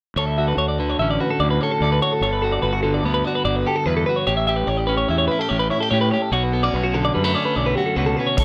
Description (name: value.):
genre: math rock and midwest emo.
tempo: 146 BPM.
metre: 5/4.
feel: straight.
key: D major.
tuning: A4 = 441 Hz.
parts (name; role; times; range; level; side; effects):
electric guitar at the edge of break-up; accompaniment; 0.2-8.4 s; D2 to B4; -25 LUFS; equal; none.
twelve-string electric guitar; arpeggios; 0.2-8.4 s; F#4 to E5; -24 LUFS; equal; none.
fuzz fingered electric bass; bass; 0.2-8.4 s; G1 to A2; -26 LUFS; equal; overdrive.
loose indie drum kit; drums; 8.4 s; hi-hat, kick drum; -18 LUFS; equal; none.
room: light reverb.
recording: none.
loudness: -20 LUFS.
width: mono.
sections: 0.2-8.4 A section.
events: none.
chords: 0.2 Dmaj9; 2.2 Gmaj9; 4.3 A9; 6.3 Bm9.